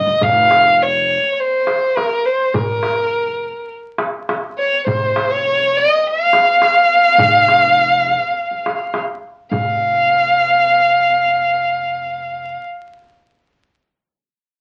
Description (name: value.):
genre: Arabic maqam ensemble.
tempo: 103 BPM.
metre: 4/4.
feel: straight.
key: F maqam bayati.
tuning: A4 = 440 Hz.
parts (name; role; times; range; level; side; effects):
dark violin; melody; 0.0-12.6 s; Bb4 to F5; -16 LUFS; equal; none.
upright bass; bass; 0.0-12.6 s; F1; -32 LUFS; equal; none.
darbuka; percussion; 0.2-9.8 s; none; -25 LUFS; equal; none.
room: moderate studio ambience, RT60 0.5 s.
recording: very old 78 rpm record, vinyl crackle.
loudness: -15 LUFS.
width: mono.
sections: 0.0-9.5 A section; 9.5-11.8 B section.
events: none.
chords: none.